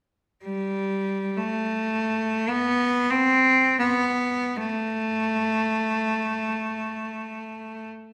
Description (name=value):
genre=caucasian folk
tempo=free time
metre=none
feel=none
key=A minor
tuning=A4 = 440 Hz
part: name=bright cello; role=solo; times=0.4-7.9 s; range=G3 to C4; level=-25 LUFS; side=equal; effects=none
room=wet recital hall reverb, RT60 1.4 s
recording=recorded in a church or concert hall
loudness=-24 LUFS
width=mono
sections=0.0-8.1 A section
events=none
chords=none